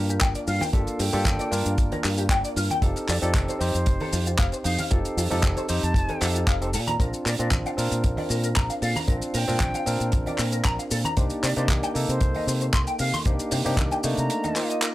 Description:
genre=nu-disco, nu disco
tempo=115 BPM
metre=4/4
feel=swing 53% on 16ths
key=unclear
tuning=A4 = 440 Hz
part: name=barky tine electric piano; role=accompaniment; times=0.0-14.9 s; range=A3 to C5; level=-29 LUFS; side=equal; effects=overdrive, sidechain pumping, tape echo
part: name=fingered electric bass with an envelope filter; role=bass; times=0.0-14.3 s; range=F1 to C3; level=-27 LUFS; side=equal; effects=transformer saturation
part: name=electric guitar with an envelope filter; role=riff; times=0.1-14.9 s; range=Eb4 to C6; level=-31 LUFS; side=left 2 dB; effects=lush chorus
part: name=damped 70s drum kit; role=drums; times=0.1-14.9 s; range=handclaps, hi-hat, shaker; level=-29 LUFS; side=equal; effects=small room ambience
part: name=cabasa and congas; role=percussion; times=0.1-14.9 s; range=none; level=-36 LUFS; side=right 2 dB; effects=none
part: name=kick drum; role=drums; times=0.2-13.9 s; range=none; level=-23 LUFS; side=equal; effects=small room ambience
part: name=silver concert flute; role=melody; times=0.5-14.7 s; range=C5 to Bb5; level=-33 LUFS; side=equal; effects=tape echo
room=small room ambience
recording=dry, gritty hardware recording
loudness=-22 LUFS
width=side -16 dB against mid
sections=0.0-14.9 A section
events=none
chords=0.0 Gm7; 2.8 F7; 6.7 Bb; 11.2 Cm7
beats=0.21 | 0.73 1.26 1.78 2.30 | 2.82 3.34 3.87 4.39 | 4.91 5.43 5.95 6.47 | 7.00 7.52 8.04 8.56 | 9.08 9.60 10.13 10.65 | 11.17 11.69 12.21 12.73 | 13.26 13.78 14.30 14.82

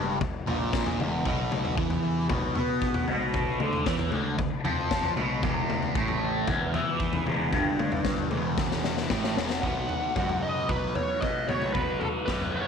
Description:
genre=psychedelic rock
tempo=115 BPM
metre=4/4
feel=straight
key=unclear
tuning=A4 = 440 Hz
part: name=fuzz guitar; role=riff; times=0.0-12.7 s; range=E2 to B3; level=-28 LUFS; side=equal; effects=distortion, phaser
part: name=fuzz picked electric bass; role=bass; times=0.0-12.7 s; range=E1 to B2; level=-33 LUFS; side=right 2 dB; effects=overdrive
part: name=raw garage drum kit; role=drums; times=0.2-12.5 s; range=kick drum, snare drum, toms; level=-30 LUFS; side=left 3 dB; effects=none
part: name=fuzz lead guitar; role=melody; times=9.6-12.7 s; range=A4 to F#5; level=-30 LUFS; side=right 2 dB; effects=wah, distortion, slapback echo
room=light reverb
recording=1960s-style stereo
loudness=-25 LUFS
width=side -6 dB against mid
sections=0.0-9.6 A section; 9.6-12.7 B section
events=drum fill 8.6-9.6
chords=0.0 Em; 1.3 Bmadd11; 5.4 Emadd11; 9.6 B5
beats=0.21 0.73 | 1.26 1.78 2.30 2.82 | 3.34 3.87 4.39 4.91 | 5.43 5.96 6.48 7.00 | 7.53 8.05 8.58 9.11 | 9.63 10.16 10.69 11.22 | 11.75 12.28

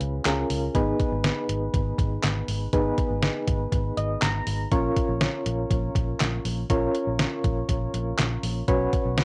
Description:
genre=synth-pop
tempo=121 BPM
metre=4/4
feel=straight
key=unclear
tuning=A4 = 436 Hz
part: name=soft electric-piano-like synth keys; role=accompaniment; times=0.0-9.2 s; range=Cb4 to Bb5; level=-30 LUFS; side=equal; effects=chorus, tremolo
part: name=vintage muted fingered electric bass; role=bass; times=0.0-9.2 s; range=Ab1 to Db2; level=-31 LUFS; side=equal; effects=none
part: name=detuned 8-bit digital drum machine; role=drums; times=0.0-9.2 s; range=handclaps, hi-hat, kick drum, snare drum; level=-29 LUFS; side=equal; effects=cassette tape
room=light reverb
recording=home recording on cassette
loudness=-25 LUFS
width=mono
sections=0.0-9.2 A section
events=synth keys fill 3.7-4.7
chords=0.0 Db; 0.7 Abm; 4.7 Bbm; 8.7 Cbsus2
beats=0.25 | 0.75 1.24 1.74 2.24 | 2.73 3.23 3.72 4.22 | 4.71 5.21 5.71 6.20 | 6.70 7.20 7.69 8.19 | 8.68 9.18

